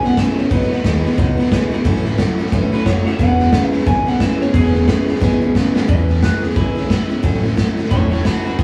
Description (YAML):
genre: rockabilly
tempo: 178 BPM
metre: 4/4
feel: swing 61% on 8ths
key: E major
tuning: A4 = 440 Hz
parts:
  - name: electric guitar through a small old amp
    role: melody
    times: 0.0-8.6 s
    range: B3 to G#5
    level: -26 LUFS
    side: equal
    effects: none
  - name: picked steel-string acoustic guitar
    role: accompaniment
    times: 0.0-8.6 s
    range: A2 to G#4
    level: -24 LUFS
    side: equal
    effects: none
  - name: electric guitar through a small old amp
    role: riff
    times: 0.0-5.9 s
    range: E2 to G#3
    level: -23 LUFS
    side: equal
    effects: none
  - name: growling FM bass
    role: bass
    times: 0.0-8.6 s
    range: E1 to E2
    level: -23 LUFS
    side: equal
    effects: none
  - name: raw garage drum kit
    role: drums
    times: 0.0-8.6 s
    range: hi-hat, kick drum, snare drum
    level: -19 LUFS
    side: equal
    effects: none
room: moderate studio reverb, RT60 0.5 s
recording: band playing live in one room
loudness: -16 LUFS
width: mono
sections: 0.0-5.9 A section; 5.9-8.6 B section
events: clean electric guitar solo 0.0-5.9; drum fill 5.2-5.9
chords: 0.0 E6; 0.5 B6; 1.9 A6; 3.2 E6; 7.2 A6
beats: 0.17 | 0.51 0.84 1.18 1.52 | 1.85 2.19 2.52 2.86 | 3.19 3.53 3.87 4.20 | 4.54 4.88 5.21 5.55 | 5.89 6.22 6.56 6.90 | 7.24 7.58 7.91 8.25 | 8.59